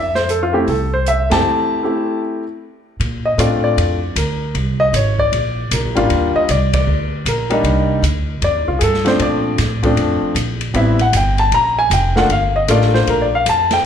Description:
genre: jazz piano trio.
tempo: 155 BPM.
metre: 4/4.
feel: swing 64% on 8ths.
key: F major, Bb major from 3.0 s.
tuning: A4 = 441 Hz.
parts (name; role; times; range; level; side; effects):
warm grand piano; melody; 0.0-13.9 s; F3 to Bb5; -16 LUFS; left 1 dB; plate reverb, slapback echo.
upright bass; bass; 0.0-13.8 s; F1 to Bb2; -18 LUFS; right 1 dB; none.
open jazz drum kit; drums; 0.2-13.8 s; hi-hat, kick drum, ride cymbal, snare drum; -23 LUFS; equal; none.
room: light reverb.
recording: live gig heard through the venue's PA, club reverb.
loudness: -14 LUFS.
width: side -8 dB against mid.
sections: 0.0-3.0 A section; 3.0-13.9 B section.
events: band accent 1.3, 6.7; break 1.4-3.0.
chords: 0.0 Fmaj9; 3.0 Bbmaj7; 4.5 Abadd11; 5.3 Bb7b9; 6.1 Ebmaj9; 7.6 Cm9; 8.4 F13; 9.2 Bbmaj7; 10.7 Am7; 11.5 N.C.; 12.3 Gm7.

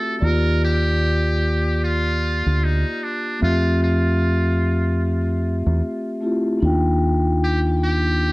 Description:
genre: lo-fi hip hop.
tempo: 75 BPM.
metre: 4/4.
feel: swing 61% on 16ths.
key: Eb major.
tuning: A4 = 441 Hz.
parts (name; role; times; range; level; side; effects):
trumpet with metal mute; melody; 0.0-8.3 s; D4 to Bb4; -25 LUFS; right 1 dB; low-pass filter.
vibraphone with soft mallets; accompaniment; 0.0-8.3 s; A3 to G5; -22 LUFS; left 1 dB; cassette tape, low-pass filter.
deep dub fingered electric bass; bass; 0.2-8.3 s; D2 to F2; -19 LUFS; equal; none.
room: light reverb, small room ambience.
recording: none.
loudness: -18 LUFS.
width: side -21 dB against mid.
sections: 0.2-8.3 A section.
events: none.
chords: 0.2 Ebmaj9; 3.4 Fmaj9; 6.6 Ebmaj9.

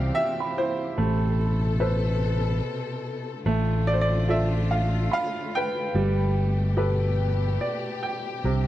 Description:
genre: acoustic folk-pop ballad.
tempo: 72 BPM.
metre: 3/4.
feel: straight.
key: unclear.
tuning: A4 = 440 Hz.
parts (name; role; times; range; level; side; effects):
clear upright piano; melody; 0.0-8.7 s; C3 to G5; -27 LUFS; right 1 dB; none.
warm studio string section; sustained chords; 0.0-8.7 s; B2 to A4; -33 LUFS; left 3 dB; none.
felt-muted upright piano; arpeggios; 0.0-6.3 s; G4 to B5; -34 LUFS; right 7 dB; none.
fingered electric bass; bass; 0.0-8.7 s; G1 to C2; -24 LUFS; equal; none.
room: little or no reverb.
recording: dry, close 1970s-style studio recording.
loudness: -23 LUFS.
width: side -14 dB against mid.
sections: 0.0-8.7 A section.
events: upright piano fill 7.2-8.4.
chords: 0.0 C; 1.0 Amadd9; 3.5 Dm/A; 5.9 Gadd9.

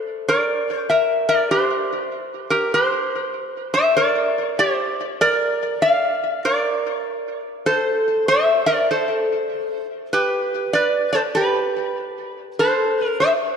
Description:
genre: hawaiian.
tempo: 98 BPM.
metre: 4/4.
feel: swing 63% on 8ths.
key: unclear.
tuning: A4 = 440 Hz.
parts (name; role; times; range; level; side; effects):
metal-body resonator slide guitar; solo; 0.3-13.3 s; G4 to F5; -18 LUFS; equal; ping-pong delay.
room: wet plate reverb, RT60 2.7 s.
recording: dreamy mix soaked in reverb.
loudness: -18 LUFS.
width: side -7 dB against mid.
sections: 0.0-13.6 A section.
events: none.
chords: 0.3 Bb6; 5.2 Bb; 7.6 Am; 10.1 G; 12.6 Am.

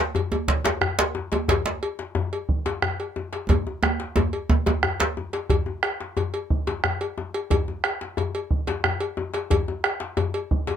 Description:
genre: west african traditional, West African drum ensemble.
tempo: 120 BPM (dotted quarters).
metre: 12/8.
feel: straight.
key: none.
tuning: none.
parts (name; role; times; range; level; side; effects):
bombo; percussion; 0.1-10.7 s; none; -24 LUFS; right 2 dB; none.
djembe; percussion; 0.1-10.8 s; none; -28 LUFS; left 5 dB; none.
cowbell; percussion; 0.2-10.8 s; none; -28 LUFS; left 2 dB; none.
djembe; percussion; 0.3-5.2 s; none; -23 LUFS; right 2 dB; none.
room: little or no reverb.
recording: close, detailed microphones.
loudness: -22 LUFS.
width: side -9 dB against mid.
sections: 0.0-5.5 A section; 5.5-10.8 B section.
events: drum fill 3.5-5.5.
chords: none.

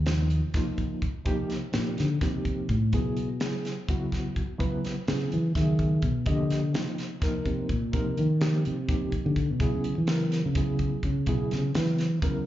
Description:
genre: electric jazz fusion.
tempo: 252 BPM (eighths).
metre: 7/8.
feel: straight.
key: unclear.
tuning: A4 = 440 Hz.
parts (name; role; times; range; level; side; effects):
fingered electric bass; bass; 0.0-12.5 s; Eb2 to E3; -26 LUFS; equal; none.
reed electric piano; accompaniment; 0.1-12.5 s; C3 to E5; -31 LUFS; right 1 dB; fast tremolo, slapback echo.
crisp fusion drum kit; drums; 0.1-12.3 s; hi-hat, kick drum, snare drum; -31 LUFS; equal; none.
room: small room ambience.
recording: live gig heard through the venue's PA, club reverb, nothing above 7.5 kHz.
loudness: -25 LUFS.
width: side -13 dB against mid.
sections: 0.0-12.5 A section.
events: fingered electric bass solo 0.0-12.5.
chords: 0.0 Cm11; 2.9 C#m11; 6.3 Cm11; 9.6 C#m7.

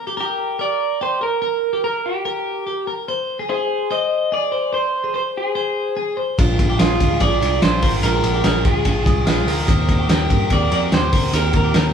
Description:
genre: jangly indie pop.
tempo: 145 BPM.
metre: 4/4.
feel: straight.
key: Eb major.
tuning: A4 = 438 Hz.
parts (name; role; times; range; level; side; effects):
twelve-string electric guitar; arpeggios; 0.0-11.9 s; F4 to C5; -25 LUFS; left 3 dB; none.
electric guitar through a small old amp; melody; 0.2-11.8 s; F4 to Eb5; -21 LUFS; right 1 dB; none.
picked plugged-in steel-string acoustic guitar; accompaniment; 6.4-11.9 s; Bb2 to G4; -25 LUFS; right 3 dB; none.
vintage muted picked electric bass; bass; 6.4-11.9 s; Ab1 to G2; -21 LUFS; equal; none.
cloth-damped thuddy drum kit; drums; 6.4-11.8 s; hi-hat, kick drum, ride cymbal, snare drum; -18 LUFS; equal; none.
glockenspiel with soft plastic mallets; second line; 9.1-10.0 s; Eb6 to F6; -32 LUFS; right 3 dB; none.
room: wet large studio reverb, RT60 1.1 s.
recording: band playing live in one room.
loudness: -16 LUFS.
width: side -7 dB against mid.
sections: 0.0-11.9 A section.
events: none.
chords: 0.0 Gm; 3.1 Ab; 6.4 Bb7; 9.7 Eb6.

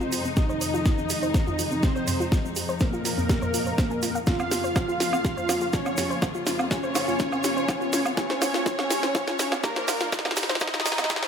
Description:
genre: melodic techno.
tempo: 123 BPM.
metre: 4/4.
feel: straight.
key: unclear.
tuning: A4 = 440 Hz.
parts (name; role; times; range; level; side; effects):
wide unison lead; melody; 0.0-11.3 s; Bb3 to F4; -29 LUFS; equal; sidechain pumping, tape echo.
big bright polysynth; second line; 0.0-11.3 s; Bb4 to F5; -32 LUFS; left 1 dB; ensemble chorus, cassette tape, sidechain pumping, ping-pong delay.
dark symphonic string section; sustained chords; 0.0-11.3 s; F2 to F4; -34 LUFS; left 3 dB; sidechain pumping.
soft round pluck; arpeggios; 0.0-11.3 s; C4 to Ab5; -33 LUFS; left 1 dB; chorus, cassette tape, sidechain pumping, ping-pong delay.
swarming drone; drone; 0.1-11.3 s; F2; -40 LUFS; right 2 dB; none.
egg shaker; percussion; 0.0-11.3 s; none; -37 LUFS; right 4 dB; none.
house drum kit; drums; 0.1-11.3 s; hi-hat, snare drum, toms, woodblock; -28 LUFS; right 1 dB; none.
electronic kick drum; drums; 0.4-11.2 s; none; -25 LUFS; equal; none.
riser; sound effects; 6.4-11.3 s; none; -38 LUFS; right 1 dB; none.
room: moderate lush hall reverb, RT60 2.0 s, digital ambience.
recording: high-pass filter.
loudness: -22 LUFS.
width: side -7 dB against mid.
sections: 0.0-11.3 A section.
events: build-up 0.0-11.3; drum fill 0.0-11.3; filter sweep on synth arpeggio sound 0.0-11.3; filter sweep on analog synth lead 0.0-11.3; filter sweep on analog polysynth 0.0-11.3; filter sweep 0.0-11.3.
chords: 0.0 Fm7; 4.3 Bbm/F.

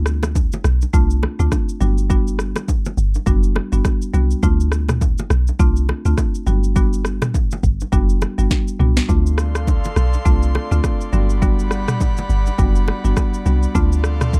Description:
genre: afrobeats.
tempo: 103 BPM.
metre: 4/4.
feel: swing 58% on 16ths.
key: G major.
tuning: A4 = 439 Hz.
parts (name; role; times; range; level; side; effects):
marimba with medium mallets; accompaniment; 0.0-14.3 s; G3 to F#4; -28 LUFS; equal; none.
deep log drum bass; bass; 0.0-14.4 s; F#1 to D2; -20 LUFS; equal; none.
afro-pop drum kit; drums; 0.1-14.4 s; kick drum, rim click, shaker, snare drum, toms; -21 LUFS; equal; none.
bongos and congas; percussion; 0.2-14.4 s; none; -32 LUFS; equal; none.
airy breathy pad; sustained chords; 9.1-14.4 s; G3 to C6; -31 LUFS; equal; chorus.
room: little or no reverb.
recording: dark, warm production.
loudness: -18 LUFS.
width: mono.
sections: 0.0-9.1 A section; 9.1-14.4 B section.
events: drum fill 8.5-9.1.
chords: 0.0 Dm7; 1.8 Gmaj7; 4.4 Dm7; 6.5 Gmaj7; 9.1 Dm7; 11.1 Gmaj7; 13.8 Dm7.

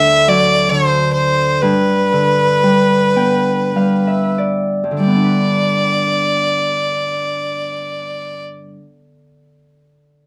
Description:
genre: celtic folk, Celtic slow air.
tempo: 46-73 BPM.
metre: 3/4.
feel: rubato.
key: G major.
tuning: A4 = 438 Hz.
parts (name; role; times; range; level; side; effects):
warm fiddle; melody; 0.0-8.4 s; B4 to E5; -17 LUFS; equal; none.
Celtic harp; accompaniment; 0.0-8.8 s; D2 to G5; -19 LUFS; equal; none.
room: wet studio reverb, RT60 0.6 s.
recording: band playing live in one room.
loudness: -15 LUFS.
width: mono.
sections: 0.0-5.0 A section; 5.0-8.8 B section.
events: slowing down 0.0-5.0; harp fill 2.6-5.0.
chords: 0.0 D; 1.6 G.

